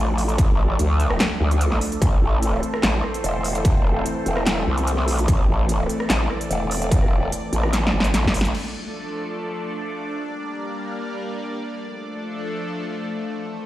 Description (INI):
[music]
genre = heavy wobble dubstep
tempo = 147 BPM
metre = 4/4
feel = half-time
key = D minor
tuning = A4 = 441 Hz
[part]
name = supersaw pad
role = sustained chords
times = 0.0-13.7 s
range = E3 to D5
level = -27 LUFS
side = equal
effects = phaser, sidechain pumping, low-pass filter
[part]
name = growl bass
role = bass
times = 0.0-8.5 s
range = E1 to D2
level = -21 LUFS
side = equal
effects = chorus, overdrive
[part]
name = big-room dance drum kit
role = drums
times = 0.2-8.6 s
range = crash cymbal, handclaps, hi-hat, rim click, snare drum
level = -24 LUFS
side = equal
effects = overdrive
[part]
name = electronic kick drum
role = drums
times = 0.4-8.3 s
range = none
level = -19 LUFS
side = equal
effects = distortion
[sound]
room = light reverb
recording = played on a big sound system in a bare room, stone room reverb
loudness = -20 LUFS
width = side -14 dB against mid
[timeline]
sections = 0.0-8.5 A section; 8.5-13.7 B section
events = drop 0.0-8.5; drum fill 7.7-8.5; band accent 8.4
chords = 0.0 Dm; 2.0 Am; 8.5 Dm; 10.2 Gm; 11.8 Dm/F